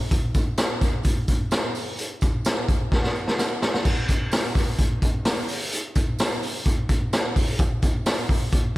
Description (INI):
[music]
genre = indie pop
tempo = 128 BPM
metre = 4/4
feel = straight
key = none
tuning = none
[part]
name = raw garage drum kit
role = drums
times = 0.1-8.6 s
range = crash cymbal, hi-hat, kick drum, snare drum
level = -21 LUFS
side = equal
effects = none
[part]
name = tambourine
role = percussion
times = 0.1-8.6 s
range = none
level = -42 LUFS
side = right 7 dB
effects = none
[sound]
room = light reverb, small room reverb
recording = none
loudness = -21 LUFS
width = side -18 dB against mid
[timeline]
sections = 0.0-3.9 A section; 3.9-8.8 B section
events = drum fill 2.9-3.9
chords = none